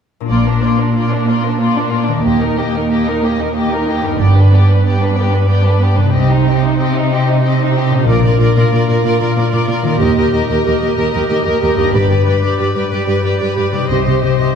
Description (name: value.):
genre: cinematic, heroic adventure film score.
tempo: 124 BPM (dotted quarters).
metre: 12/8.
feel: straight.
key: Bb major.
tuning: A4 = 440 Hz.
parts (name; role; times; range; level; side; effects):
concert harp; arpeggios; 0.2-14.6 s; G2 to C5; -20 LUFS; left 5 dB; none.
warm symphonic violin section; melody; 0.3-14.5 s; Bb4 to Eb5; -24 LUFS; left 4 dB; none.
warm symphonic violin section; second line; 0.3-14.6 s; D4 to C5; -20 LUFS; equal; none.
rich symphonic viola section; accompaniment; 0.3-14.6 s; Bb3 to G4; -19 LUFS; right 2 dB; none.
rich symphonic cello section; bass; 0.3-14.5 s; Eb2 to C3; -16 LUFS; right 2 dB; none.
rich symphonic double bass section; bass; 0.3-14.1 s; G1 to Eb2; -17 LUFS; right 1 dB; none.
room: wet recital hall reverb, RT60 1.5 s.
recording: heard from further back in the room.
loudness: -12 LUFS.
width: side -7 dB against mid.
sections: 0.3-14.6 A section.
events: build-up 0.3-14.6.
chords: 0.3 Bb; 2.3 Eb; 4.2 G; 6.1 Cm; 8.1 Bb; 10.0 Eb; 11.9 G; 13.9 Cm.